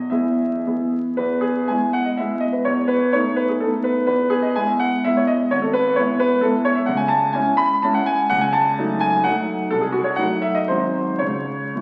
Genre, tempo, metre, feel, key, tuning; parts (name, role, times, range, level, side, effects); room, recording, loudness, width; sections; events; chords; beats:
classical, romantic triple-time dance for piano with dotted rhythms; 103-137 BPM; 3/4; rubato; E major, C# minor from 6.9 s; A4 = 443 Hz
clear concert grand piano; solo; 0.0-11.8 s; G#1 to B5; -20 LUFS; equal
wet recital hall reverb, RT60 1.4 s; very old 78 rpm record, vinyl crackle; -20 LUFS; mono
0.0-1.2 A section; 1.2-11.8 A section
0.0 E; 2.7 B7/E; 4.1 E; 5.5 E/G#; 6.9 C#m; 8.3 D#m7b5/C#; 9.7 Cdim7; 10.7 G#7; 11.2 C#m
0.11 0.67 | 1.19 1.69 2.20 | 2.66 3.14 3.63 | 4.10 4.58 5.07 | 5.52 5.98 6.44 | 6.88 7.35 7.83 | 8.30 8.77 9.25 | 9.71 10.19 10.70 | 11.21 11.76